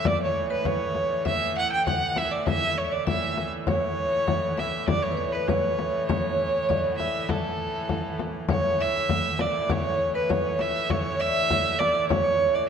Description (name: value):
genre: medieval dance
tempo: 100 BPM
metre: 2/4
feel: straight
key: unclear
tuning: A4 = 441 Hz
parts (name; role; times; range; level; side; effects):
- warm fiddle; melody; 0.0-12.7 s; A4 to G5; -26 LUFS; right 2 dB; none
- concert harp; second line; 0.0-12.7 s; A4 to G5; -32 LUFS; right 2 dB; none
- marimba with hard mallets; second line; 0.0-12.7 s; A4 to F#5; -33 LUFS; left 3 dB; none
- clear hurdy-gurdy; drone; 0.0-12.7 s; A2 to E3; -34 LUFS; right 1 dB; none
- frame drum; percussion; 0.0-12.4 s; none; -28 LUFS; left 3 dB; none
room: wet scoring stage reverb, RT60 1.5 s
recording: dark, warm production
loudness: -23 LUFS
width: side -7 dB against mid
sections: 0.0-8.5 A section; 8.5-12.7 B section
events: none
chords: none